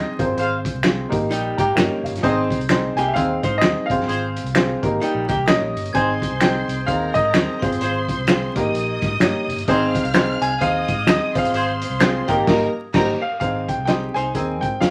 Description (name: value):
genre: uptempo 1960s-style soul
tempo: 129 BPM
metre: 4/4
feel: swing 60% on 8ths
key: Ab major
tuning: A4 = 440 Hz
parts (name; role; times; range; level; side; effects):
- warm baby grand piano; melody; 0.0-14.9 s; C5 to Ab5; -26 LUFS; equal; none
- warm upright piano; accompaniment; 0.0-14.9 s; Bb3 to Bb5; -26 LUFS; equal; none
- vintage muted fingered electric bass; bass; 0.2-14.9 s; F1 to Ab2; -31 LUFS; equal; none
- vintage drum kit; drums; 0.2-14.9 s; crash cymbal, hi-hat, kick drum, snare drum; -25 LUFS; equal; none
- warm horn section; second line; 0.4-11.7 s; Eb4 to F5; -27 LUFS; equal; none
- finger snap; percussion; 0.8-12.1 s; none; -26 LUFS; equal; none
- archtop guitar, miked and amplified; riff; 1.3-5.9, 12.0-14.9 s; G3 to Eb5; -26 LUFS; equal; none
- glockenspiel with brass mallets; second line; 5.5-12.4 s; C6 to Ab6; -36 LUFS; equal; none
- warm studio violin section; second line; 5.9-13.1 s; Bb4 to F6; -30 LUFS; equal; none
room: moderate studio reverb, RT60 0.7 s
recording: vinyl crackle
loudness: -20 LUFS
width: mono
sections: 0.0-13.4 A section; 13.4-14.9 B section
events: upright piano fill 1.3-2.2; band accent 12.5-13.4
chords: 0.1 Fm; 1.1 Eb/Ab; 2.2 Ab; 3.9 Fm; 4.8 Eb/Ab; 5.9 Ab; 7.6 Fm; 8.5 Eb/Ab; 9.7 Ab; 11.3 Fm; 12.2 Eb/Ab; 13.4 Ab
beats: | 0.38 0.84 1.30 1.77 | 2.23 2.70 3.16 3.62 | 4.09 4.55 5.02 5.48 | 5.95 6.41 6.88 7.34 | 7.81 8.28 8.74 9.21 | 9.68 10.14 10.61 11.07 | 11.54 12.01 12.48 12.95 | 13.41 13.88 14.35 14.82